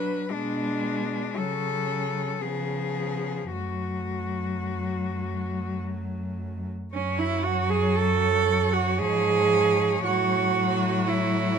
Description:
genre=classical, lyrical piece for cello ensemble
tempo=51-60 BPM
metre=3/4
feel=rubato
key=F# minor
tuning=A4 = 440 Hz
part: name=clear cello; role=melody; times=0.0-11.6 s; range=D4 to C#5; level=-32 LUFS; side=left 6 dB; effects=none
part: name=clear cello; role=second line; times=0.0-11.6 s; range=A3 to A4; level=-27 LUFS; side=right 8 dB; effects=none
part: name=rich cello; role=accompaniment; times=0.0-11.6 s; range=E#3 to G#3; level=-31 LUFS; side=left 5 dB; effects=none
part: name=rich cello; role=bass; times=0.0-11.6 s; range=F#2 to C#3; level=-30 LUFS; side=right 1 dB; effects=none
room=light reverb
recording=close, detailed microphones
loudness=-24 LUFS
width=side -7 dB against mid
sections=0.0-6.9 A section; 6.9-11.6 A section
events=none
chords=0.3 G#dim/B; 1.4 F#m/C#; 2.4 C#7; 3.5 F#m; 9.0 C#/G#; 10.1 F#m/A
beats=| 0.31 1.38 2.41 | 3.52 4.68 5.83 | 6.94 7.97 9.00 | 10.05 11.08

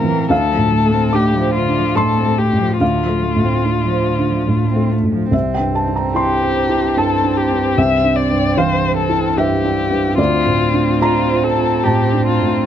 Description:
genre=neoclassical piano and strings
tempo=73 BPM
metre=3/4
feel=uneven beats, rubato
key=D minor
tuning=A4 = 440 Hz
part: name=muted violin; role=melody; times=0.0-12.7 s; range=F4 to E5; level=-19 LUFS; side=left 6 dB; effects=none
part: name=muted cello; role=second line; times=0.0-12.7 s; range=D3 to C4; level=-23 LUFS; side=right 4 dB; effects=none
part: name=felt-muted upright piano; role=accompaniment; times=0.0-12.7 s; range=C2 to D6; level=-16 LUFS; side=right 1 dB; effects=none
room=little or no reverb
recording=close, detailed microphones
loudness=-14 LUFS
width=side -10 dB against mid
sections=0.0-12.7 A section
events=none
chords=0.3 Dm7; 5.3 Cadd9; 10.2 Dm7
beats=| 0.31 1.15 1.97 | 2.81 3.64 4.49 | 5.33 6.16 6.97 | 7.78 8.58 9.38 | 10.18 11.01 11.85

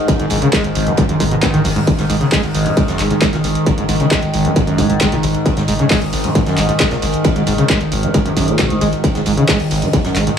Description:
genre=driving peak-time techno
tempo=134 BPM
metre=4/4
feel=straight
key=unclear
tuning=A4 = 440 Hz
part: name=overtone-sweeping drone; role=drone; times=0.0-10.4 s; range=G#2 to D#3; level=-19 LUFS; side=left 1 dB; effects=chorus, built-in reverb, phaser, sidechain pumping
part: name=electronic kick drum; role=drums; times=0.1-10.0 s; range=none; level=-18 LUFS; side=equal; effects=distortion
part: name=loose indie drum kit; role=drums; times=0.1-10.3 s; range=hi-hat, ride cymbal, snare drum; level=-29 LUFS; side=right 1 dB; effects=sidechain pumping on cymbals, high-pass filter on cymbals, sidechain pumping on hats, high-pass filter on hats, high-pass filter on snare, high-pass filter on room
part: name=punchy analog drum machine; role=drums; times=0.1-10.4 s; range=handclaps, hi-hat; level=-22 LUFS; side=equal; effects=none
part: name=overdriven acid bass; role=riff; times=0.2-10.3 s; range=G#1 to B3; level=-18 LUFS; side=equal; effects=lush chorus, vintage 12-bit sampler grit, sidechain pumping, tape echo
part: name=saturated sub bass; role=bass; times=0.2-10.3 s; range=G#1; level=-23 LUFS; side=equal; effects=overdrive, sidechain pumping, low-pass filter
room=light reverb, studio ambience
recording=none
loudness=-13 LUFS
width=side -8 dB against mid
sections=0.0-10.4 A section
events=none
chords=0.0 G#5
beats=| 0.08 0.53 0.98 1.43 | 1.87 2.32 2.77 3.22 | 3.67 4.11 4.56 5.01 | 5.46 5.90 6.35 6.80 | 7.25 7.70 8.14 8.59 | 9.04 9.49 9.93 10.38

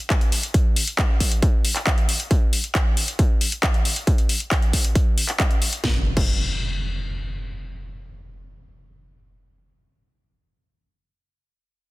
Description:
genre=uplifting trance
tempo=136 BPM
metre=4/4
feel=straight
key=none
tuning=none
part: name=electronic kick drum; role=drums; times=0.1-6.3 s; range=none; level=-19 LUFS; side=equal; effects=distortion
part: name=techno drum kit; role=drums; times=0.1-6.3 s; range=crash cymbal, handclaps, hi-hat, snare drum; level=-24 LUFS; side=left 1 dB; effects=sidechain pumping on hats, sidechain pumping on cymbals
part: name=impact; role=sound effects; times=5.8-9.4 s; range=none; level=-29 LUFS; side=equal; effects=none
room=digital ambience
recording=dense, heavily limited modern master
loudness=-19 LUFS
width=side -20 dB against mid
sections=0.0-5.8 A section; 5.8-9.4 B section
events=none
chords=none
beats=0.10 | 0.54 0.98 1.43 1.87 | 2.31 2.75 3.19 3.63 | 4.07 4.51 4.95 5.39 | 5.84 6.28 6.72 7.16 | 7.60 8.04 8.48 8.93

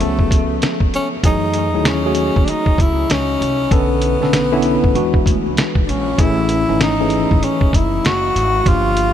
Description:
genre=hip hop, jazz-hop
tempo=97 BPM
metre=4/4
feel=swing 62% on 16ths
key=unclear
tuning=A4 = 439 Hz
part: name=warm tenor saxophone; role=melody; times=0.0-9.1 s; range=A3 to F#4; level=-19 LUFS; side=left 1 dB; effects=ping-pong delay
part: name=tine electric piano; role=accompaniment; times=0.0-9.1 s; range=D3 to A4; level=-20 LUFS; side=left 1 dB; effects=overdrive, fast stereo tremolo
part: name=upright bass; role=bass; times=0.0-9.1 s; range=F#1 to F#2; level=-22 LUFS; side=equal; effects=none
part: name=lo-fi sampler-style drum kit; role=drums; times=0.0-9.1 s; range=hi-hat, kick drum, snare drum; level=-18 LUFS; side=equal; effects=none
room=light reverb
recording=none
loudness=-14 LUFS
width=side -10 dB against mid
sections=0.0-9.1 A section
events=none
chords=0.0 C#aug7; 1.2 F#m9; 3.7 Bm9; 5.0 E9; 6.2 Amaj7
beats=0.00 0.62 | 1.24 1.86 2.48 3.09 | 3.71 4.33 4.95 5.57 | 6.19 6.81 7.42 8.04 | 8.66

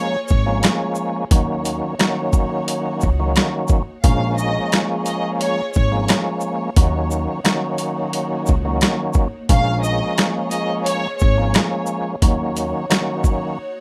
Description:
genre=hip hop, boom-bap hip-hop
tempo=88 BPM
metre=4/4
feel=swing 54% on 16ths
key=Bb minor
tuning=A4 = 440 Hz
part: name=warm studio violin section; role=melody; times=0.0-11.5 s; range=Db5 to F5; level=-28 LUFS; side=equal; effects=tape echo
part: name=percussive tonewheel organ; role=accompaniment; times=0.0-13.6 s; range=Eb3 to Db4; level=-24 LUFS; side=equal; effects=overdrive, chorus vibrato, cassette tape
part: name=warm studio string section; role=sustained chords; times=0.0-13.8 s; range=Bb3 to Db5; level=-35 LUFS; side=equal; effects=none
part: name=upright bass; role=bass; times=0.3-12.7 s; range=Ab1 to Eb2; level=-24 LUFS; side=equal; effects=none
part: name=boom bap sampler-style drum kit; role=drums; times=0.3-13.4 s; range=hi-hat, kick drum, rim click, shaker, snare drum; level=-19 LUFS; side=equal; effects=overdrive
room=light reverb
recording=rough home demo mix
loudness=-19 LUFS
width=mono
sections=0.0-13.8 A section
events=break 13.6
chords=0.0 Bbm7; 1.3 Ebm7; 4.0 Bbm7; 6.8 Ebm7; 9.5 Bbm7; 12.2 Ebm7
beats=0.63 | 1.31 2.00 2.68 3.36 | 4.04 4.72 5.41 6.09 | 6.77 7.45 8.13 8.81 | 9.49 10.18 10.86 11.54 | 12.22 12.90 13.59

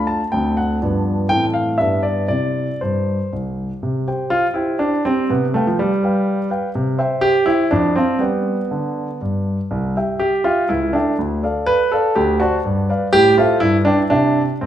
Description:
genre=classical-period piano sonatina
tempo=122 BPM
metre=3/4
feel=straight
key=C major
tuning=A4 = 440 Hz
part: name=warm grand piano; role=solo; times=0.0-14.7 s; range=C2 to A5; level=-16 LUFS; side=equal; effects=none
room=wet recital hall reverb, RT60 1.4 s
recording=recorded in a church or concert hall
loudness=-16 LUFS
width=side -11 dB against mid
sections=0.0-3.8 A section; 3.8-14.7 B section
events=none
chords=0.3 D7; 0.8 G7; 1.3 Am; 1.8 G; 2.3 C; 3.8 C5; 5.3 G7/C; 6.7 C; 7.7 F; 8.2 G; 9.7 C; 10.7 A7/C#; 11.2 Dm; 12.2 D7; 12.6 G7; 13.1 Am; 13.6 G; 14.1 C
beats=0.33 | 0.82 1.30 1.79 | 2.29 2.81 3.32 | 3.82 4.32 4.81 | 5.30 5.79 6.27 | 6.75 7.23 7.72 | 8.21 8.71 9.21 | 9.71 10.21 10.70 | 11.19 11.67 12.16 | 12.65 13.13 13.62 | 14.11 14.61

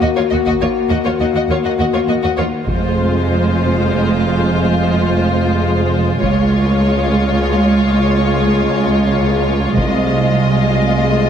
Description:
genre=cinematic, epic orchestral film score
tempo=68 BPM (dotted quarters)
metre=6/8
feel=straight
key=unclear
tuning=A4 = 440 Hz
part: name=warm symphonic violin section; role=melody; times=0.0-11.3 s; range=C5 to Eb5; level=-22 LUFS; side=left 3 dB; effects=none
part: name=rich symphonic violin section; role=second line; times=0.0-11.3 s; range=F4 to Gb4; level=-23 LUFS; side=left 3 dB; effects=none
part: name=warm symphonic viola section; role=accompaniment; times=0.0-11.3 s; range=Ab3 to Bb3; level=-21 LUFS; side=right 3 dB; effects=none
part: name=warm French horn section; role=sustained chords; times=0.0-11.3 s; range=Ab3 to Gb4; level=-20 LUFS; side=left 5 dB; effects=none
part: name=warm symphonic cello section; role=bass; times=0.0-11.3 s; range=C2 to F2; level=-18 LUFS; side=right 2 dB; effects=none
part: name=warm symphonic double bass section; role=bass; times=0.0-11.3 s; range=F1 to Eb2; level=-20 LUFS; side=right 3 dB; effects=none
part: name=taiko ensemble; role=drums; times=0.5-10.9 s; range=none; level=-24 LUFS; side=equal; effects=none
room=moderate scoring stage reverb, RT60 1.9 s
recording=heavily compressed radio sound, multiband compression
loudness=-13 LUFS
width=side -8 dB against mid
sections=0.0-2.7 A section; 2.7-11.3 B section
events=none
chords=0.0 Ebm; 2.7 Fm; 6.2 Db; 9.8 Ab6/C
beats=0.01 | 0.90 1.78 | 2.67 3.56 | 4.45 5.33 | 6.22 7.11 | 8.00 8.88 | 9.77 10.65

